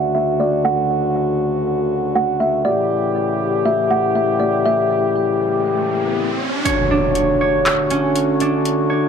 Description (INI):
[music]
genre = hip hop, atmospheric cloud-rap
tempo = 120 BPM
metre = 4/4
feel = half-time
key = D major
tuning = A4 = 440 Hz
[part]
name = kalimba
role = melody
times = 0.0-6.6 s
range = D5 to F#5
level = -20 LUFS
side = right 2 dB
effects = low-pass filter, digital delay
[part]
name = warm brass ensemble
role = sustained chords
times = 0.0-9.1 s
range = D2 to C#5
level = -18 LUFS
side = left 2 dB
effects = stereo widening, low-pass filter
[part]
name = riser and impact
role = sound effects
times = 5.4-8.7 s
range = none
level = -24 LUFS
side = equal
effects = none
[part]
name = concert harp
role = arpeggios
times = 6.7-9.1 s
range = C#4 to C#5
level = -20 LUFS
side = right 5 dB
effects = low-pass filter, digital delay
[part]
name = smooth R&B drum kit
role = drums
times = 6.7-8.8 s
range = handclaps, hi-hat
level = -22 LUFS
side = left 1 dB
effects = none
[sound]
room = light reverb, small room ambience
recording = none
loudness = -16 LUFS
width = side -7 dB against mid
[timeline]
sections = 0.0-6.7 A section; 6.7-9.1 B section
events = riser 5.4-6.7; kick muted 6.7-9.1; impact 6.7-8.7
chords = 0.0 Dmaj7; 2.7 A7; 6.7 Dmaj7